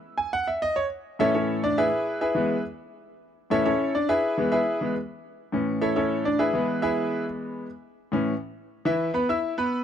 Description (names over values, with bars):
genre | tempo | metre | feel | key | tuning
latin | 208 BPM | 4/4 | straight | E major | A4 = 440 Hz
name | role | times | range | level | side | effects
bright grand piano | solo | 0.2-9.8 s | A2 to E6 | -23 LUFS | equal | none
room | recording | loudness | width
small room ambience | dry, close 1970s-style studio recording | -23 LUFS | side -9 dB against mid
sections
0.0-8.9 A section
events
grand piano solo 0.0-8.9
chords
0.0 E; 0.8 A; 1.9 E; 3.1 A; 4.2 E; 5.4 A; 6.5 E; 7.7 A; 8.9 E5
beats
0.18 0.47 | 0.76 1.05 1.34 1.63 | 1.92 2.21 2.50 2.79 | 3.07 3.36 3.65 3.94 | 4.23 4.52 4.81 5.10 | 5.39 5.67 5.96 6.25 | 6.54 6.83 7.12 7.41 | 7.70 7.99 8.28 8.57 | 8.86 9.14 9.43 9.72